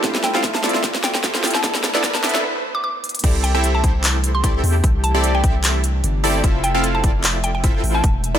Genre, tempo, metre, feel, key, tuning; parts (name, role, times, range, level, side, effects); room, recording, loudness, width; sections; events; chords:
future bass; 150 BPM; 4/4; swing 55% on 16ths, half-time; C major; A4 = 440 Hz
felt-muted upright piano; accompaniment; 0.0-3.3 s; G3 to E5; -31 LUFS; right 2 dB; sidechain pumping, tape echo
airy breathy pad; sustained chords; 0.0-8.4 s; C3 to E5; -33 LUFS; right 1 dB; chorus, sidechain pumping
supersaw stab; riff; 0.0-8.4 s; B3 to G5; -22 LUFS; right 1 dB; sidechain pumping
electronic kick drum; drums; 0.0-8.1 s; -18 LUFS; equal
pop drum kit; drums; 0.0-8.3 s; crash cymbal, handclaps, hi-hat, snare drum; -21 LUFS; equal
riser; sound effects; 0.0-2.4 s; -29 LUFS; right 2 dB
mallet-like synth pluck; melody; 0.2-8.1 s; G5 to D6; -26 LUFS; equal; chorus, sidechain pumping, ping-pong delay
long sustained 808-style bass; bass; 3.2-8.4 s; E1 to E2; -20 LUFS; equal; sidechain pumping
light reverb, digital ambience; high-pass filter; -16 LUFS; side -10 dB against mid
0.0-3.2 A section; 3.2-8.4 B section
build-up 0.0-3.2; drum fill 0.0-2.4, 3.0; riser 0.0-2.4; break 2.4-3.2; drop 3.2-8.4
0.0 Fmaj7; 1.6 E7sus4; 3.2 C69; 6.4 Fmaj7